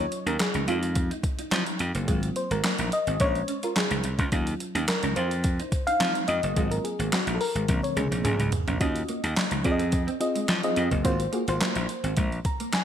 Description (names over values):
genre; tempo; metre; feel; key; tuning
early-eighties boogie funk; 107 BPM; 4/4; straight; Eb dorian; A4 = 440 Hz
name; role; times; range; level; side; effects
mellow FM electric piano; accompaniment; 0.0-12.8 s; Db3 to Bb5; -29 LUFS; left 1 dB; chorus
slap bass; bass; 0.0-12.4 s; Gb1 to F3; -27 LUFS; equal; none
mellow electric guitar; riff; 0.1-12.7 s; Ab3 to F4; -35 LUFS; right 3 dB; ensemble chorus
crisp 8-bit digital drum machine; drums; 0.1-12.8 s; handclaps, hi-hat, kick drum, snare drum, toms; -28 LUFS; equal; overdrive, gated reverb
room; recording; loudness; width
moderate plate reverb, RT60 1.6 s, digital ambience; bright 1980s-style digital production; -24 LUFS; side -9 dB against mid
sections
0.0-8.8 A section; 8.8-12.8 B section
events
FM electric piano solo 0.0-8.8; drum fill 7.7-8.8; FM electric piano fill 12.2-12.8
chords
0.0 Ebm9; 0.7 Fm7; 2.1 Ab13; 3.2 Bbm9; 4.3 Ebm9; 5.2 Fm7; 6.6 Ab13; 7.7 Bbm9; 8.8 Ebm9; 9.7 Fm7; 11.1 Ab13; 12.2 Bb7(no3)